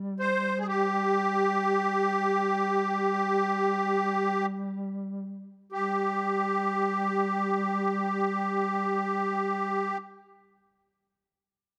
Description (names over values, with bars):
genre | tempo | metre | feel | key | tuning
caucasian folk | free time | none | none | unclear | A4 = 440 Hz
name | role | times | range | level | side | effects
dark duduk | drone | 0.0-10.0 s | G3 | -35 LUFS | equal | none
musette accordion | melody | 0.2-10.0 s | G4 to C5 | -28 LUFS | equal | none
room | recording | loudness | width
light reverb | close, detailed microphones | -28 LUFS | mono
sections
0.0-5.7 A section; 5.7-9.4 B section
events
slowing down 0.0-5.7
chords
none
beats
free time